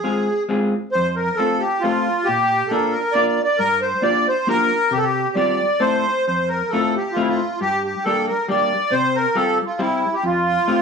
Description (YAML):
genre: musette waltz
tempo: 136 BPM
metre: 3/4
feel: swing 54% on 8ths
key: F major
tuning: A4 = 439 Hz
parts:
  - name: accordion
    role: melody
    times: 0.0-10.8 s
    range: E4 to D5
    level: -18 LUFS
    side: right 1 dB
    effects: light tremolo tuning, cassette tape, plate reverb
  - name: vintage hollow-body jazz guitar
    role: accompaniment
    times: 0.0-10.8 s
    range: F2 to Bb4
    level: -22 LUFS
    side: left 3 dB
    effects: plate reverb
room: wet booth ambience, RT60 0.2 s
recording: home recording on cassette, small room ambience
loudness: -17 LUFS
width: side -5 dB against mid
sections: 0.9-10.8 A section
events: none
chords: 0.0 Fm; 0.9 F; 2.3 Bb; 3.6 Gm7; 4.9 Csus4; 5.8 Am; 6.3 Fmaj7; 7.6 Gm; 8.9 Csus4; 9.8 C; 10.2 Fadd9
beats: 0.03 0.48 | 0.94 1.39 1.83 | 2.28 2.72 3.15 | 3.59 4.03 4.47 | 4.91 5.36 5.81 | 6.26 6.71 7.16 | 7.60 8.04 8.48 | 8.92 9.36 9.80 | 10.24 10.68